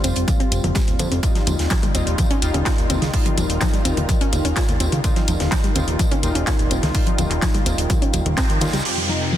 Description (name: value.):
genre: melodic techno.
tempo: 126 BPM.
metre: 4/4.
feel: straight.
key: unclear.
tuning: A4 = 440 Hz.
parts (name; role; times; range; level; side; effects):
soft round pluck; arpeggios; 0.0-9.4 s; Eb3 to F4; -26 LUFS; equal; chorus, sidechain pumping, tape echo.
analog synth brass; stabs; 0.0-9.4 s; G3 to F4; -27 LUFS; left 2 dB; chorus, sidechain pumping, tape echo.
fat analog bass; bass; 0.0-8.8 s; Eb1 to F2; -23 LUFS; equal; sidechain pumping.
deep reggae drum kit; drums; 0.0-9.4 s; hi-hat, snare drum, tambourine; -34 LUFS; right 3 dB; high-pass filter on hats, low-pass filter on hats, high-pass filter on snare, low-pass filter on snare, high-pass filter on perc, low-pass filter on perc, high-pass filter on room, low-pass filter on room.
techno drum kit; drums; 0.0-8.9 s; congas, crash cymbal, handclaps, hi-hat; -25 LUFS; left 2 dB; sidechain pumping on hats, sidechain pumping on cymbals, sidechain pumping on perc.
granular cloud pad; texture; 0.0-9.4 s; C4 to G5; -31 LUFS; right 1 dB; built-in reverb, sidechain pumping.
electronic kick drum; drums; 0.3-8.5 s; none; -21 LUFS; equal; none.
warm analog pad; sustained chords; 8.8-9.4 s; F2 to F4; -25 LUFS; equal; chorus, sidechain pumping.
wide unison lead; melody; 8.9-9.3 s; Eb4 to G4; -27 LUFS; equal; lush chorus, vintage 12-bit sampler grit, sidechain pumping.
downlifter; sound effects; 8.9-9.4 s; none; -24 LUFS; right 1 dB; none.
room: light reverb.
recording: dense, heavily limited modern master.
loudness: -17 LUFS.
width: side -12 dB against mid.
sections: 0.0-8.9 A section.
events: band accent 8.4.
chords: 0.0 Fsus2; 1.2 Ebadd9; 8.9 Fsus2.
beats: 0.28 0.76 | 1.23 1.71 2.18 2.66 | 3.14 3.61 4.09 4.57 | 5.04 5.52 5.99 6.47 | 6.95 7.42 7.90 8.38 | 8.85 9.33.